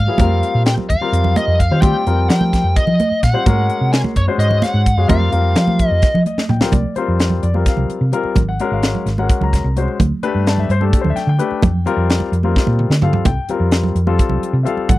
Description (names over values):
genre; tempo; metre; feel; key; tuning
electric jazz fusion; 257 BPM (eighths); 7/8; straight; unclear; A4 = 439 Hz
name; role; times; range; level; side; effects
biting lead guitar; melody; 0.0-6.2 s; Db5 to Ab5; -20 LUFS; equal; overdrive
hollow-body short-scale fingered electric bass; bass; 0.0-15.0 s; Ab1 to F3; -16 LUFS; equal; none
warm baby grand piano; accompaniment; 0.1-15.0 s; F#3 to Bb5; -21 LUFS; left 5 dB; none
congas; percussion; 0.1-15.0 s; none; -22 LUFS; right 4 dB; none
crisp fusion drum kit; drums; 0.2-15.0 s; hi-hat, kick drum, snare drum, toms; -16 LUFS; equal; none
room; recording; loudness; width
little or no reverb; dry, close 1970s-style studio recording; -13 LUFS; side -17 dB against mid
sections
0.0-6.7 A section; 6.7-15.0 B section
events
grand piano fill 6.0-6.7; drum fill 6.3-6.7, 12.6-13.3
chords
0.2 F9sus4; 3.5 Ab9sus4; 5.1 Fsus24; 6.7 C7sus4; 8.4 Ab9sus4; 10.0 Dsus4; 11.6 Fsus24; 13.3 C7sus4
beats
| 0.19 0.42 0.66 0.89 1.12 1.36 1.59 | 1.83 2.06 2.29 2.53 2.76 2.99 3.23 | 3.46 3.69 3.93 4.16 4.39 4.63 4.86 | 5.09 5.33 5.56 5.79 6.03 6.26 6.49 | 6.73 6.96 7.19 7.43 7.66 7.89 8.13 | 8.36 8.59 8.83 9.06 9.29 9.53 9.76 | 9.99 10.23 10.46 10.70 10.93 11.16 11.39 | 11.63 11.86 12.10 12.33 12.56 12.79 13.03 | 13.26 13.49 13.72 13.96 14.19 14.42 14.66 | 14.89